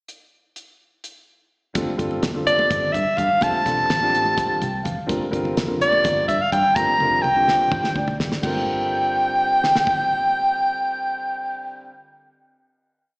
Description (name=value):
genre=electric jazz fusion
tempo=252 BPM (eighths)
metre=7/8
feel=straight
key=G minor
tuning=A4 = 441 Hz
part: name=damped 70s drum kit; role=drums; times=0.1-10.0 s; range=crash cymbal, hi-hat, kick drum, snare drum, toms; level=-27 LUFS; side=equal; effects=none
part: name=dark concert grand piano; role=accompaniment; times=1.7-11.9 s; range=D3 to G5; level=-27 LUFS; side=equal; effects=none
part: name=fingered electric bass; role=bass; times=1.8-11.9 s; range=E1 to G2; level=-31 LUFS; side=equal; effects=none
part: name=congas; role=percussion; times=1.8-8.7 s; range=none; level=-33 LUFS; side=equal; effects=slapback echo
part: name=breathy soprano saxophone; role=melody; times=2.5-11.9 s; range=D5 to Bb5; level=-18 LUFS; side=equal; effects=slapback echo
room=moderate lush hall reverb, RT60 1.9 s, small room reverb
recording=live gig heard through the venue's PA, recital hall reverb, small speaker sound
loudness=-18 LUFS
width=side -32 dB against mid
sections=0.1-1.8 pickup bar; 1.8-8.4 A section; 8.4-11.8 final chord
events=grand piano fill 4.4-5.1, 7.7-8.4; drum fill 7.0-8.4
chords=0.1 N.C.; 1.8 Gsus2; 3.4 Fadd9; 5.1 Gm7